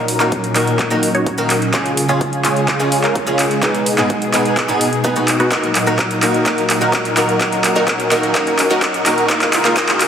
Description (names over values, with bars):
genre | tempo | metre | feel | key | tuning
EDM, festival progressive house | 127 BPM | 4/4 | straight | Eb minor | A4 = 441 Hz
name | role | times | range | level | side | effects
lush unison pad | sustained chords | 0.0-10.1 s | Bb2 to Bb4 | -21 LUFS | equal | chorus, phaser, sidechain pumping
supersaw stab | riff | 0.0-10.1 s | Cb4 to Db5 | -18 LUFS | equal | phaser, sidechain pumping, low-pass filter, dub echo
big-room dance drum kit | drums | 0.1-10.1 s | handclaps, hi-hat | -18 LUFS | equal | overdrive
picked old ladder-braced acoustic guitar | accompaniment | 0.2-9.9 s | Ab2 to Bb4 | -22 LUFS | right 1 dB | sidechain pumping, dub echo
electronic kick drum | drums | 0.3-9.9 s | none | -25 LUFS | equal | overdrive, high-pass filter on kick
riser | sound effects | 7.0-10.1 s | none | -30 LUFS | right 2 dB | none
room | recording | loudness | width
wet lush hall reverb, RT60 2.0 s | heavily compressed radio sound, high-pass filter | -13 LUFS | side -8 dB against mid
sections
0.0-10.1 A section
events
build-up 0.0-10.1; drum fill 0.0-10.1; filter sweep on supersaw synth 0.0-10.1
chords
0.0 Ebm; 1.7 Db; 3.6 Abm; 5.5 Ebm; 9.3 Db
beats
0.32 0.79 1.26 | 1.74 2.21 2.68 3.15 | 3.63 4.10 4.57 5.04 | 5.52 5.99 6.46 6.93 | 7.41 7.88 8.35 8.82 | 9.30 9.77